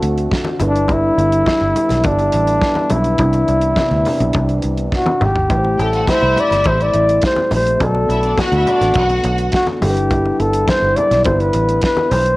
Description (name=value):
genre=disco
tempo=104 BPM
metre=4/4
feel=straight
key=A dorian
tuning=A4 = 437 Hz
part: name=breathy flugelhorn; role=melody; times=0.0-12.4 s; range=D4 to D5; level=-16 LUFS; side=left 1 dB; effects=none
part: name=mellow tine electric piano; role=accompaniment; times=0.0-12.4 s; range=C3 to D5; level=-25 LUFS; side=left 2 dB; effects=medium stereo tremolo
part: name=mellow French horn section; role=sustained chords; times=0.0-12.4 s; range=C3 to F#4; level=-23 LUFS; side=right 1 dB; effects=stereo widening
part: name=fingered electric bass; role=bass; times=0.0-12.4 s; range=G1 to D2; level=-19 LUFS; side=equal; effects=none
part: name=damped 70s drum kit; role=drums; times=0.0-12.4 s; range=hi-hat, kick drum, snare drum, toms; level=-22 LUFS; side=equal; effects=none
part: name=congas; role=percussion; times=0.3-12.3 s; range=none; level=-25 LUFS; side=left 2 dB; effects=none
part: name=bright studio string section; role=second line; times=5.8-9.5 s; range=D4 to G5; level=-23 LUFS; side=equal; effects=none
room=moderate spring reverb, RT60 1.8 s, studio ambience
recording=home recording on cassette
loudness=-13 LUFS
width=side -20 dB against mid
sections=0.0-5.5 A section; 5.5-12.4 B section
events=drum fill 4.9-5.5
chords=0.0 D7; 0.6 G6; 3.2 Cmaj9; 5.5 Am7; 7.8 Bm7; 9.8 G6